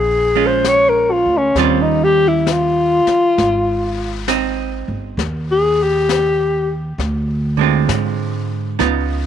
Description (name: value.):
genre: jazz ballad.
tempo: 66 BPM.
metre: 4/4.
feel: swing 67% on 8ths.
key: unclear.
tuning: A4 = 441 Hz.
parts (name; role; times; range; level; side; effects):
mellow alto saxophone; melody; 0.0-6.7 s; C4 to Db5; -14 LUFS; left 2 dB; none.
upright bass; bass; 0.0-9.3 s; G1 to Ab2; -21 LUFS; right 1 dB; none.
archtop guitar, miked and amplified; accompaniment; 0.4-9.3 s; D3 to F4; -20 LUFS; right 17 dB; none.
jazz brush drum kit; drums; 0.6-9.3 s; brushed snare drum, hi-hat, snare drum; -27 LUFS; left 11 dB; none.
room: light reverb, studio ambience.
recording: 1960s-style stereo with parts hard left and right.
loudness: -14 LUFS.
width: side -9 dB against mid.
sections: 0.0-9.3 A section.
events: alto saxophone solo 0.0-9.3.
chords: 0.0 Bbm7; 1.6 Eb9; 3.4 Abmaj7; 7.0 Dm7b5.